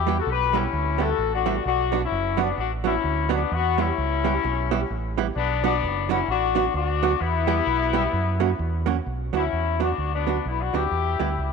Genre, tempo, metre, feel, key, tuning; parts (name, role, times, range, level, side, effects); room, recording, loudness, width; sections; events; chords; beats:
ska; 130 BPM; 4/4; swing 59% on 8ths; B minor; A4 = 440 Hz
clear horn section; melody; 0.0-11.5 s; B3 to B4; -24 LUFS; left 10 dB
deep dub fingered electric bass; bass; 0.0-11.5 s; F#1 to F#2; -27 LUFS; right 1 dB
vintage hollow-body jazz guitar; accompaniment; 0.1-11.3 s; F#3 to G4; -27 LUFS; right 13 dB
moderate plate reverb, RT60 2.9 s; 1960s-style stereo with parts hard left and right; -21 LUFS; side -5 dB against mid
0.0-9.1 A section; 9.1-11.5 B section
0.0 Em; 1.6 Bm; 3.5 Em; 5.4 Bm; 7.2 Em; 8.1 F#; 9.1 Bm; 10.9 Em
0.26 0.72 1.19 | 1.65 2.11 2.57 3.04 | 3.50 3.96 4.43 4.89 | 5.35 5.81 6.28 6.74 | 7.20 7.67 8.13 8.59 | 9.06 9.52 9.99 10.45 | 10.92 11.38